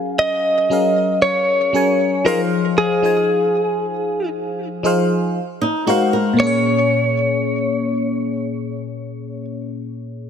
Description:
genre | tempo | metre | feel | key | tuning
R&B | 58 BPM | 4/4 | straight | Bb minor | A4 = 444 Hz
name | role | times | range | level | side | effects
direct-recorded clean electric guitar | melody | 0.0-9.4 s | Ab4 to F5 | -18 LUFS | equal | digital delay
FM electric piano | accompaniment | 0.0-10.3 s | Bb2 to Ab5 | -20 LUFS | left 2 dB | chorus, phaser
flamenco guitar | arpeggios | 5.6-6.6 s | Eb4 to Bb4 | -21 LUFS | equal | none
room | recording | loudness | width
light reverb, small room ambience | none | -16 LUFS | side -7 dB against mid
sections
0.0-6.4 A section; 6.4-10.3 B section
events
none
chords
0.0 Gbmaj9; 2.3 Fm7; 5.4 Ab13; 6.4 Bbm7

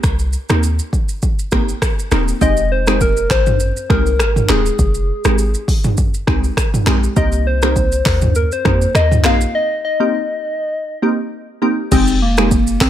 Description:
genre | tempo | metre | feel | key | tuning
afrobeats | 101 BPM | 4/4 | swing 55% on 16ths | F minor | A4 = 439 Hz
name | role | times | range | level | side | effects
clean 808-style bass | bass | 0.0-12.9 s | Eb1 to F2 | -17 LUFS | equal | none
deep house drum kit | drums | 0.0-12.9 s | crash cymbal, finger snaps, handclaps, hi-hat, kick drum, rim click, shaker, toms | -17 LUFS | equal | overdrive
glassy wavetable pluck | accompaniment | 0.5-12.5 s | Ab3 to G4 | -20 LUFS | right 1 dB | chorus
soft struck synth lead | melody | 2.4-12.9 s | Bb3 to F5 | -18 LUFS | left 2 dB | chorus
room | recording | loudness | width
digital ambience | none | -13 LUFS | side -11 dB against mid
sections
0.0-2.4 A section; 2.4-11.9 B section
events
break 9.5-11.9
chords
0.0 Cm7; 2.4 Fm7; 7.2 Cm7; 11.9 Fm7

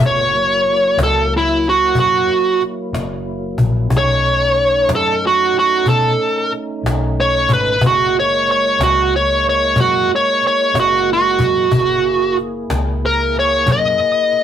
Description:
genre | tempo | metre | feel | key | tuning
slow blues | 62 BPM (dotted quarters) | 12/8 | straight | F# mixolydian | A4 = 440 Hz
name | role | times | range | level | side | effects
tonewheel organ | sustained chords | 0.0-14.4 s | F#3 to G#4 | -25 LUFS | right 1 dB | slow rotary speaker, overdrive, chorus vibrato
vintage muted fingered electric bass | bass | 0.0-14.0 s | F#1 to B2 | -22 LUFS | left 1 dB | none
smooth overdriven lead guitar | melody | 0.1-14.4 s | E4 to D#5 | -13 LUFS | right 1 dB | none
cajon | drums | 0.6-14.4 s | none | -20 LUFS | left 2 dB | none
room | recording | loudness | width
moderate small room reverb, RT60 0.5 s | rough rehearsal-room recording, warm saturation | -13 LUFS | side -9 dB against mid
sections
0.0-14.4 A section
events
lead electric guitar solo 0.0-14.4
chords
0.0 F#7; 3.9 B9; 7.8 F#9

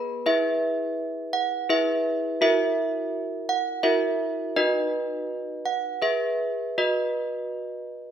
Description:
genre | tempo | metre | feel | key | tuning
classical, tune for handbells | 83 BPM | 3/4 | straight | B major | A4 = 435 Hz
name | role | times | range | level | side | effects
desk bells | solo | 0.0-8.1 s | B3 to B5 | -23 LUFS | right 1 dB | none
room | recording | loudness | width
moderate recital hall reverb, RT60 1.5 s | none | -23 LUFS | side -9 dB against mid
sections
0.0-8.1 A section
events
none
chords
0.3 E; 2.4 F#7/E; 4.5 B/D#; 6.0 E/G#; 6.8 B/F#

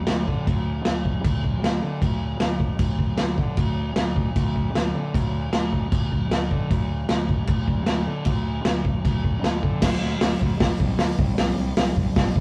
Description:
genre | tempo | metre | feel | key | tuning
garage rock duo or trio | 154 BPM | 4/4 | straight | unclear | A4 = 438 Hz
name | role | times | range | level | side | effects
fuzz fingered electric bass | bass | 0.1-12.4 s | A1 to D3 | -29 LUFS | equal | overdrive, tube saturation
vintage drum kit | drums | 0.1-12.4 s | crash cymbal, hi-hat, kick drum, snare drum | -24 LUFS | equal | none
room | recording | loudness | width
light reverb | rough rehearsal-room recording | -23 LUFS | mono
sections
0.0-9.8 A section; 9.8-12.4 B section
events
none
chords
none

